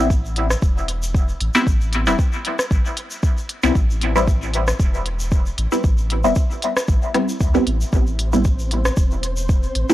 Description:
dub techno; 115 BPM; 4/4; swing 55% on 16ths; A minor; A4 = 439 Hz
filtered dub chord stab; stabs; 0.0-9.9 s; G3 to E4; -21 LUFS; equal; phaser, dub echo
soft dub sub bass; bass; 0.0-9.8 s; E1 to D2; -22 LUFS; equal; sidechain pumping
electronic kick drum; drums; 0.1-9.6 s; -18 LUFS; equal
tube shaker; percussion; 0.1-9.9 s; -35 LUFS; left 1 dB
deep house drum kit; drums; 0.4-9.9 s; hi-hat, rim click; -23 LUFS; equal
flickering grainy texture; texture; 8.2-9.9 s; C4 to C5; -31 LUFS; equal; built-in reverb, sidechain pumping
digital ambience; dry, gritty hardware recording, cassette tape; -17 LUFS; side -14 dB against mid
0.0-7.9 A section; 7.9-9.9 A section
0.0 Am
0.10 0.62 1.14 | 1.67 2.19 2.71 3.23 | 3.75 4.28 4.80 5.32 | 5.84 6.36 6.88 7.41 | 7.93 8.45 8.97 9.49

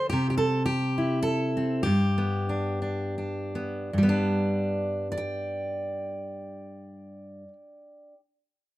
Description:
folk, solo fingerstyle acoustic guitar; 77-109 BPM; 3/4; rubato; G major; A4 = 440 Hz
fingerpicked steel-string acoustic guitar; solo; 0.0-8.2 s; G2 to G5; -26 LUFS; equal
light reverb; dark, warm production; -25 LUFS; side -16 dB against mid
0.0-3.9 A section; 3.9-8.6 B section
slowing down 0.1-3.9
0.1 C; 1.9 G
| 0.13 0.69 1.26 | 1.86 2.50 3.19 | 3.95 4.73 5.50 | 6.27 7.03 7.80

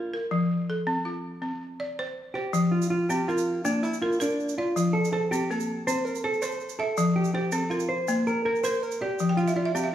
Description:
west african traditional, West African string and xylophone music; 108 BPM (dotted quarters); 12/8; straight; F major; A4 = 436 Hz
hollow-body jazz guitar; melody; 0.0-9.9 s; D4 to C5; -28 LUFS; right 1 dB
balafon; arpeggios; 0.0-9.9 s; F3 to G5; -26 LUFS; left 1 dB
tube shaker; percussion; 2.5-9.8 s; -40 LUFS; right 7 dB
wet recital hall reverb, RT60 1.7 s; recorded in a church or concert hall, small room ambience; -24 LUFS; side -11 dB against mid
0.0-2.5 A section; 2.5-9.9 A section
balafon fill 9.3-9.9
0.3 F; 1.4 Csus2; 2.5 F5; 3.6 Bb; 4.8 F; 5.9 C; 7.0 F5; 8.1 Bb; 9.2 F5
| 0.31 0.87 1.42 1.98 | 2.53 3.09 3.65 4.20 | 4.75 5.31 5.86 6.42 | 6.97 7.53 8.09 8.64 | 9.20 9.75

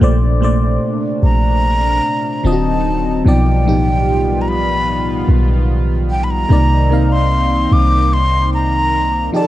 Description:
contemporary R&B; 74 BPM; 4/4; straight; A4 = 440 Hz
FM electric piano; accompaniment; 0.0-9.5 s; A2 to F5; -18 LUFS; equal; chorus, phaser
chorused pulse-width pad; sustained chords; 0.0-9.5 s; Bb2 to D5; -22 LUFS; equal
clean 808-style bass; bass; 0.0-9.3 s; D1 to C2; -15 LUFS; equal
breathy jazz flute; melody; 1.2-9.5 s; G5 to D6; -19 LUFS; equal
light reverb, digital ambience; worn, warbling old tape, cassette tape, warbly pitch drift; -12 LUFS; side -14 dB against mid
0.0-9.5 A section
0.0 Bbmaj9; 2.4 D7b9; 3.3 G7b13/B; 6.5 Cm9
| 0.01 0.82 1.63 2.44 | 3.25 4.07 4.88 5.69 | 6.50 7.31 8.12 8.93

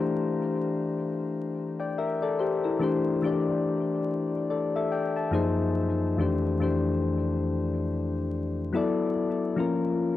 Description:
hip hop; 71 BPM; 4/4; swing 60% on 16ths; A4 = 438 Hz
soft electric-piano-like synth keys; solo; 0.0-10.2 s; F2 to Bb5; -25 LUFS; left 3 dB; chorus, cassette tape, low-pass filter, tape echo
light reverb; home recording on cassette, vinyl crackle; -25 LUFS; side -13 dB against mid
0.0-10.2 A section
0.0 C; 5.3 Gb6; 6.2 F6; 8.7 Bm; 9.6 Bbm
0.27 1.11 1.96 | 2.80 3.65 4.49 5.34 | 6.18 7.03 7.87 8.72 | 9.56

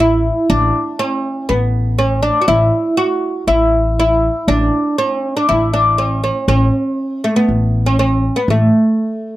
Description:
Arabic maqam ensemble; 120 BPM; 4/4; straight; A maqam rast; A4 = 440 Hz
oud; melody; 0.0-9.4 s; A3 to F#4; -14 LUFS; equal
upright bass; bass; 0.0-8.7 s; A1; -16 LUFS; equal
little or no reverb; dry, close 1970s-style studio recording; -13 LUFS; side -15 dB against mid
0.0-9.4 A section
| 0.49 0.99 1.49 1.99 | 2.49 2.99 3.49 3.99 | 4.49 4.99 5.49 5.99 | 6.49 6.98 7.48 7.98 | 8.48 8.98

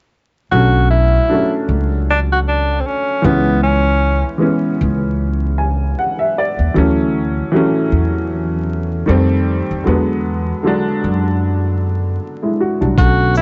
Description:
lo-fi hip hop; 77 BPM; 4/4; swing 57% on 16ths; B dorian; A4 = 440 Hz
breathy tenor saxophone; melody; 0.5-4.4, 13.0-13.4 s; B3 to F#4; -19 LUFS; equal; low-pass filter
warm upright piano; accompaniment; 0.5-13.4 s; D3 to G#5; -20 LUFS; equal; low-pass filter
upright bass; bass; 0.5-13.4 s; B1 to F#2; -19 LUFS; equal
dark analog pad; sustained chords; 13.3-13.4 s; B3 to F#5; -32 LUFS; equal
lo-fi sampler-style drum kit; drums; 13.0-13.4 s; hi-hat, kick drum, shaker; -16 LUFS; equal
light reverb; vinyl crackle, nothing above 7.7 kHz; -16 LUFS; mono
0.5-13.4 A section
upright piano fill 5.2-6.7
0.5 Bm9; 3.2 C#m11; 6.7 Dmaj9; 9.1 F9; 9.9 E9
| 0.51 1.29 2.07 2.85 | 3.63 4.41 5.18 5.96 | 6.74 7.52 8.30 9.08 | 9.86 10.64 11.42 12.20 | 12.98

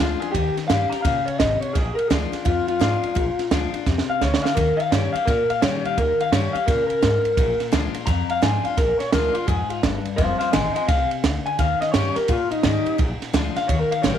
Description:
rockabilly; 171 BPM; 4/4; swing 64% on 8ths; Bb mixolydian; A4 = 440 Hz
electric guitar through a small old amp; melody; 0.0-14.2 s; D4 to Bb5; -22 LUFS; left 2 dB; tape echo
picked steel-string acoustic guitar; accompaniment; 0.0-14.2 s; F2 to G4; -28 LUFS; left 11 dB
upright bass; bass; 0.0-14.2 s; F1 to Db3; -26 LUFS; equal
compact cocktail drum kit; drums; 0.2-14.1 s; kick drum, ride cymbal, snare drum; -24 LUFS; right 4 dB
moderate spring reverb, RT60 1.6 s, small room ambience; 1960s-style stereo; -19 LUFS; side -9 dB against mid
0.0-14.2 A section
clean electric guitar solo 0.0-14.2; drum fill 3.9-4.6
0.3 Eb7; 1.8 Bb7; 4.6 Eb7; 7.4 Bb7; 10.2 F7; 11.6 Eb7; 13.0 Bb7
| 0.34 0.69 1.05 1.40 | 1.75 2.10 2.46 2.81 | 3.16 3.51 3.87 4.22 | 4.57 4.92 5.27 5.62 | 5.97 6.33 6.68 7.03 | 7.38 7.73 8.08 8.43 | 8.78 9.13 9.48 9.83 | 10.18 10.53 10.88 11.23 | 11.59 11.94 12.29 12.64 | 12.99 13.34 13.69 14.04

